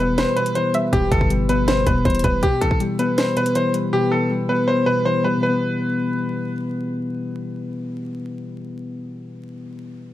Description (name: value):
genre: hip hop, trap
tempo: 160 BPM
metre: 4/4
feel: half-time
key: E minor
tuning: A4 = 443 Hz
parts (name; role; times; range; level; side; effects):
- bright grand piano; melody; 0.0-6.5 s; G4 to C5; -22 LUFS; equal; digital delay
- soft electric-piano-like synth keys; accompaniment; 0.0-10.1 s; B2 to B4; -22 LUFS; left 2 dB; chorus
- hard-hitting 808-style bass; bass; 0.0-2.4 s; E1 to G1; -23 LUFS; equal; none
- hollow square pluck; second line; 0.2-0.9 s; B4 to E5; -28 LUFS; right 2 dB; chorus, digital delay
- trap drum kit; drums; 0.2-3.8 s; hi-hat, kick drum, snare drum; -22 LUFS; equal; none
room: little or no reverb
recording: vinyl crackle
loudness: -18 LUFS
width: side -13 dB against mid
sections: 0.0-5.4 A section; 5.4-8.4 B section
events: none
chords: 0.0 Em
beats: 0.18 0.55 | 0.93 1.30 1.68 2.05 | 2.43 2.80 3.18 3.55 | 3.93 4.30 4.68 5.05 | 5.43 5.80 6.18 6.55 | 6.93 7.30 7.68 8.05